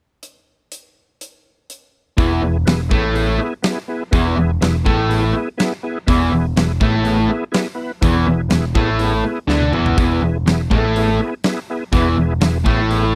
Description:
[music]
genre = blues rock power trio and southern rock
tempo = 123 BPM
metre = 4/4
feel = straight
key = E mixolydian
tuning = A4 = 441 Hz
[part]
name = big rock drum kit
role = drums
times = 0.2-13.0 s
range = hi-hat, kick drum, snare drum, toms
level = -22 LUFS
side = equal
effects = none
[part]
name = overdriven tonewheel organ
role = sustained chords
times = 2.2-13.1 s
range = B3 to B4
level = -26 LUFS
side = equal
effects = slow rotary speaker, chorus vibrato
[part]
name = distorted electric guitar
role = riff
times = 2.2-13.1 s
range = E2 to D4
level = -20 LUFS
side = equal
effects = distortion
[part]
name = overdriven picked electric bass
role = bass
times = 2.2-13.1 s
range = E1 to D2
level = -22 LUFS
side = equal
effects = none
[sound]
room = little or no reverb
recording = dry, close 1970s-style studio recording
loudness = -17 LUFS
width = mono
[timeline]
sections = 0.2-2.2 A section; 2.2-13.2 B section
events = drum fill 9.5-10.0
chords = 0.2 N.C.; 2.2 E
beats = | 0.23 0.72 1.20 1.69 | 2.18 2.67 3.15 3.64 | 4.13 4.62 5.10 5.59 | 6.08 6.57 7.05 7.54 | 8.03 8.51 9.00 9.49 | 9.97 10.46 10.95 11.44 | 11.92 12.41 12.90

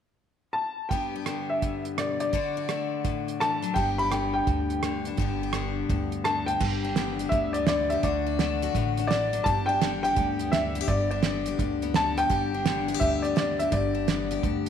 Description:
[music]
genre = honky-tonk and classic country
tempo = 169 BPM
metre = 4/4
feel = swing 64% on 8ths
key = G major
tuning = A4 = 440 Hz
[part]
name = clear upright piano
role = melody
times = 0.5-14.4 s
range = D5 to B5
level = -28 LUFS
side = equal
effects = tape echo
[part]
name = picked steel-string acoustic guitar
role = accompaniment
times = 0.9-14.7 s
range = G2 to G4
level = -29 LUFS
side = left 7 dB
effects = none
[part]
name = cloth-damped thuddy drum kit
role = drums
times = 0.9-14.7 s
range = crash cymbal, hi-hat, kick drum, rim click, snare drum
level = -30 LUFS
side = right 4 dB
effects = none
[part]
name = upright bass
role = bass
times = 3.8-14.7 s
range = G1 to D2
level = -32 LUFS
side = right 1 dB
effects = none
[sound]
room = moderate echo chamber reverb, RT60 1.6 s, small room ambience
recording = 1960s-style stereo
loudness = -24 LUFS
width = side -8 dB against mid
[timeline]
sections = 0.9-6.6 A section; 6.6-14.7 B section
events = none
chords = 0.0 N.C.; 0.9 G; 2.3 D; 3.8 G; 8.0 D; 9.5 G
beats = 0.19 0.55 | 0.91 1.26 1.62 1.98 | 2.33 2.69 3.05 3.40 | 3.76 4.12 4.47 4.83 | 5.18 5.54 5.90 6.25 | 6.61 6.96 7.32 7.68 | 8.03 8.39 8.74 9.10 | 9.46 9.81 10.17 10.52 | 10.88 11.23 11.59 11.94 | 12.30 12.65 13.01 13.37 | 13.72 14.08 14.43

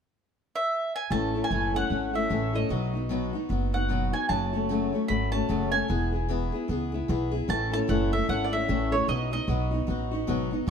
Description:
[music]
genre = honky-tonk and classic country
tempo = 150 BPM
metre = 4/4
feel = swing 60% on 8ths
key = A major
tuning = A4 = 440 Hz
[part]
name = mandolin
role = melody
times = 0.6-10.5 s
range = C#5 to B5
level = -30 LUFS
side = right 2 dB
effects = none
[part]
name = picked steel-string acoustic guitar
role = accompaniment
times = 1.1-10.7 s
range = F#2 to A4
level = -28 LUFS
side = left 3 dB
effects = none
[part]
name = upright bass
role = bass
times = 1.1-10.7 s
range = E1 to C#2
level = -30 LUFS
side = right 1 dB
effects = none
[sound]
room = moderate plate reverb, RT60 2.3 s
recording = none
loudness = -25 LUFS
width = side -7 dB against mid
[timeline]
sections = 0.0-1.1 A section; 1.1-7.5 B section; 7.5-10.7 C section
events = none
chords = 0.0 N.C.; 1.1 A; 2.7 B; 4.3 F#m; 5.9 E; 7.5 A; 9.1 B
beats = 0.31 0.71 | 1.11 1.51 1.91 2.31 | 2.71 3.10 3.50 3.90 | 4.30 4.70 5.10 5.50 | 5.90 6.29 6.69 7.09 | 7.49 7.89 8.29 8.69 | 9.08 9.48 9.88 10.28 | 10.68

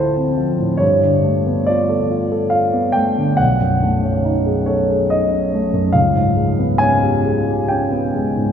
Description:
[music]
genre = classical, impressionist solo piano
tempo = 69 BPM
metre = 3/4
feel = rubato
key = unclear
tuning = A4 = 441 Hz
[part]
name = warm concert grand piano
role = solo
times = 0.0-8.5 s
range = B1 to A5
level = -14 LUFS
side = equal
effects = none
[sound]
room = wet cathedral reverb, RT60 4.7 s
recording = recorded in a church or concert hall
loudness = -14 LUFS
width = side -8 dB against mid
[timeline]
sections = 0.0-8.5 A section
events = none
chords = 0.0 Dm9; 0.8 G9; 3.4 B13; 6.0 C#7#11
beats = | 0.81 1.68 2.52 | 3.40 4.24 5.11 | 5.96 6.82 7.71

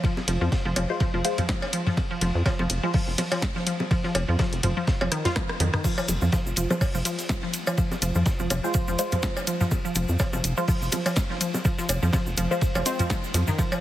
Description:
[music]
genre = minimal techno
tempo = 124 BPM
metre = 4/4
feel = swing 56% on 16ths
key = F minor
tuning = A4 = 440 Hz
[part]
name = resonant blip pluck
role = riff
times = 0.0-13.7 s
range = Eb3 to F4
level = -28 LUFS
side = equal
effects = chorus, cassette tape, sidechain pumping, ping-pong delay
[part]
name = crunchy breakbeat drum kit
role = drums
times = 0.0-13.7 s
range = hi-hat, ride cymbal, snare drum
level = -37 LUFS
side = equal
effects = sidechain pumping on cymbals, high-pass filter on cymbals, sidechain pumping on hats, high-pass filter on hats, high-pass filter on snare, high-pass filter on room
[part]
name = electronic kick drum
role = drums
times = 0.0-13.7 s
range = none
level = -26 LUFS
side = equal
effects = none
[part]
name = electronic bongos, cowbell and toms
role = percussion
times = 0.2-13.8 s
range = none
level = -30 LUFS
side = equal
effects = none
[part]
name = rubbery square bass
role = bass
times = 0.3-13.4 s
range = F1 to F2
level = -26 LUFS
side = equal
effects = tube saturation, sidechain pumping
[part]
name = punchy analog drum machine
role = drums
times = 0.3-13.5 s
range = crash cymbal, hi-hat, rim click, snare drum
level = -31 LUFS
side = equal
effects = none
[part]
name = filtered dub chord stab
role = stabs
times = 0.9-13.0 s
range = Ab3 to C5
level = -31 LUFS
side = left 2 dB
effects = phaser, lush chorus, dub echo
[part]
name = egg shaker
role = percussion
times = 5.8-13.8 s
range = none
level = -36 LUFS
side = right 3 dB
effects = none
[sound]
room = light reverb, studio reverb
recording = heavily compressed radio sound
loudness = -22 LUFS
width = side -13 dB against mid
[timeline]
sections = 0.0-13.8 A section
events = drum fill 5.1-5.8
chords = none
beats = | 0.04 0.52 1.00 1.49 | 1.97 2.46 2.94 3.42 | 3.91 4.39 4.88 5.36 | 5.84 6.33 6.81 7.29 | 7.78 8.26 8.75 9.23 | 9.71 10.20 10.68 11.17 | 11.65 12.13 12.62 13.10 | 13.59

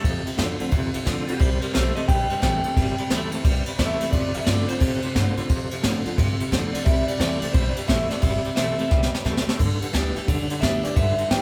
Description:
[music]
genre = rockabilly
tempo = 176 BPM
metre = 4/4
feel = swing 63% on 8ths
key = C major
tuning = A4 = 440 Hz
[part]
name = electric guitar through a small old amp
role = melody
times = 0.0-11.4 s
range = G4 to G5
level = -31 LUFS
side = equal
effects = spring reverb
[part]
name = picked steel-string acoustic guitar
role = accompaniment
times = 0.0-11.4 s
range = F2 to G4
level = -32 LUFS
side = equal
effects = none
[part]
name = twangy electric guitar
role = riff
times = 0.0-11.4 s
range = F2 to A3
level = -32 LUFS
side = equal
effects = tremolo
[part]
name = upright bass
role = bass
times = 0.0-11.4 s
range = G1 to A2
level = -29 LUFS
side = equal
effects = none
[part]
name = jazz brush drum kit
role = drums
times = 0.0-11.4 s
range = kick drum, ride cymbal, snare drum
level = -26 LUFS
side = equal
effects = none
[sound]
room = light reverb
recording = band playing live in one room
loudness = -23 LUFS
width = mono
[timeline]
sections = 0.0-11.4 A section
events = clean electric guitar solo 0.0-11.4; drum fill 8.9-9.6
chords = 0.0 F; 1.4 C; 4.1 F; 6.9 C; 9.6 G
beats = | 0.03 0.38 0.72 1.06 | 1.40 1.74 2.08 2.42 | 2.77 3.11 3.45 3.79 | 4.13 4.47 4.81 5.15 | 5.50 5.84 6.18 6.52 | 6.86 7.20 7.54 7.89 | 8.23 8.57 8.91 9.25 | 9.60 9.94 10.28 10.62 | 10.96 11.31

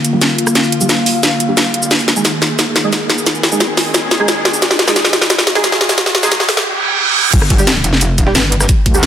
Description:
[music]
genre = dark technical drum and bass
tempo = 177 BPM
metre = 4/4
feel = straight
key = G phrygian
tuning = A4 = 440 Hz
[part]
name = sweeping resonant pad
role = sustained chords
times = 0.0-7.3 s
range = D3 to Ab4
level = -18 LUFS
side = left 1 dB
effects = lush chorus, sidechain pumping
[part]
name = drum and bass drum kit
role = drums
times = 0.0-9.1 s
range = cabasa, crash cymbal, hi-hat, rim click, snare drum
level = -13 LUFS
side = equal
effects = overdrive, studio reverb
[part]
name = riser and reverse cymbal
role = sound effects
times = 0.0-7.3 s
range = none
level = -20 LUFS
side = right 3 dB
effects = none
[part]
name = filtered dub chord stab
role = stabs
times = 0.1-9.0 s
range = G3 to Ab4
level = -20 LUFS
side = right 2 dB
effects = ensemble chorus, dub echo
[part]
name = metallic wobble bass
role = bass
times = 7.3-8.3 s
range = F1 to G1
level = -16 LUFS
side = equal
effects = chorus, overdrive
[part]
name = breakbeat sampler-style drum kit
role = drums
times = 7.3-9.1 s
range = hi-hat, snare drum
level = -25 LUFS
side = left 1 dB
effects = none
[part]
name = electronic kick drum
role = drums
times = 7.3-8.9 s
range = none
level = -12 LUFS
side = equal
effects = overdrive, studio reverb
[part]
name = metallic wobble bass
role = bass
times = 8.3-9.1 s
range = G1 to D2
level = -15 LUFS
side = equal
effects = chorus
[sound]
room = moderate lush hall reverb, RT60 1.7 s, digital ambience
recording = dense, heavily limited modern master, high-pass filter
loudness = -10 LUFS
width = side -9 dB against mid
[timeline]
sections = 0.0-7.3 A section; 7.3-9.1 B section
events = build-up 0.0-7.3; drum fill 0.0-6.7; riser 0.0-6.7; filter sweep on synth stab 0.0-7.3; reverse cymbal 6.7-7.3; drop 7.3-9.1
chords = 0.0 Gm; 1.9 Absus2; 7.3 G5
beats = 0.21 | 0.55 0.89 1.23 1.57 | 1.91 2.25 2.59 2.93 | 3.27 3.60 3.94 4.28 | 4.62 4.96 5.30 5.64 | 5.98 6.32 6.66 6.99 | 7.33 7.67 8.01 8.35 | 8.69 9.03

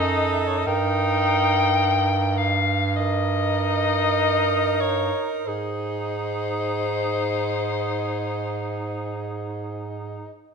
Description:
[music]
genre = classical, lyrical piece for single-reed quartet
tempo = 45-52 BPM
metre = 4/4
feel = rubato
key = unclear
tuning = A4 = 440 Hz
[part]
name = mellow soprano saxophone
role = melody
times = 0.0-10.0 s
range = B#4 to G5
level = -25 LUFS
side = left 6 dB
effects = none
[part]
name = clear alto saxophone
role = second line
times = 0.0-10.4 s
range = G#4 to A#4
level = -28 LUFS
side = right 8 dB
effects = none
[part]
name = warm tenor saxophone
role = accompaniment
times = 0.0-10.3 s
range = D#4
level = -28 LUFS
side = left 1 dB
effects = none
[part]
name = mellow bass clarinet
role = bass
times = 0.0-10.3 s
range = F#2 to G#2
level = -26 LUFS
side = right 3 dB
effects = none
[sound]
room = moderate recital hall reverb, RT60 1.4 s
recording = minimal, uncompressed stereo recording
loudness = -21 LUFS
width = side -6 dB against mid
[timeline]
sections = 0.0-10.5 A section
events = none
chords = 0.0 D#dim/F#; 0.7 D#/G; 5.5 G#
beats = | 0.67 1.82 2.97 4.19 | 5.46 6.79 8.08 9.37

